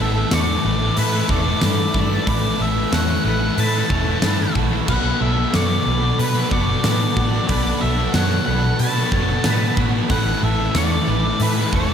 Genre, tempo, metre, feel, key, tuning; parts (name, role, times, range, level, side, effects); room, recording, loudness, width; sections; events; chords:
rock, shoegaze and dream pop; 92 BPM; 4/4; straight; A4 = 440 Hz
octave-fuzz lead guitar; melody; 0.0-11.9 s; B4 to A5; -25 LUFS; left 2 dB; distortion, digital delay
granular cloud pad; sustained chords; 0.0-11.9 s; A4 to E6; -30 LUFS; left 1 dB; built-in reverb
twangy electric guitar; arpeggios; 0.0-11.9 s; F#4 to C#6; -30 LUFS; right 2 dB; ensemble chorus, digital delay
crunchy overdriven guitar; riff; 0.0-11.9 s; A2 to A4; -25 LUFS; right 11 dB; reverse reverb
thick fuzz guitar; riff; 0.0-11.9 s; A2 to B3; -24 LUFS; left 10 dB; distortion, lush chorus
vintage muted fingered electric bass; bass; 0.0-11.9 s; E1 to B2; -22 LUFS; right 1 dB
huge arena drum kit; drums; 0.3-11.9 s; crash cymbal, hi-hat, kick drum, snare drum; -24 LUFS; equal
light reverb, small room reverb; -16 LUFS; side -8 dB against mid
0.0-11.9 A section
0.0 Asus2; 4.9 Bm7; 10.1 Asus2